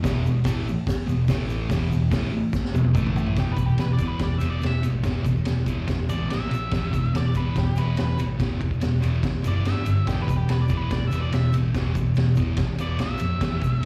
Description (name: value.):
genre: garage rock duo or trio.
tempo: 143 BPM.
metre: 4/4.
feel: straight.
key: unclear.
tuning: A4 = 439 Hz.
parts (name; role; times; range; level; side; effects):
thick fuzz guitar; riff; 0.0-13.9 s; E2 to A#3; -28 LUFS; equal; distortion.
hollow-body short-scale picked electric bass; bass; 0.0-13.8 s; E1 to E#2; -27 LUFS; equal; overdrive.
vintage drum kit; drums; 0.0-13.9 s; hi-hat, kick drum, ride cymbal, snare drum, toms; -30 LUFS; equal; none.
tube shaker; percussion; 0.0-13.8 s; none; -56 LUFS; equal; none.
octave-fuzz lead guitar; melody; 3.4-13.8 s; G4 to E5; -35 LUFS; equal; distortion, slapback echo.
room: small room ambience.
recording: live gig heard through the venue's PA, club reverb.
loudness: -24 LUFS.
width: mono.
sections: 0.0-3.4 A section; 3.4-13.9 B section.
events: drum fill 2.5-3.4.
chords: 0.0 E5; 1.3 A5; 1.7 E5; 3.0 A5; 3.4 E5; 6.3 A#5; 6.7 E5; 9.7 G5; 10.1 E5; 13.0 A#5.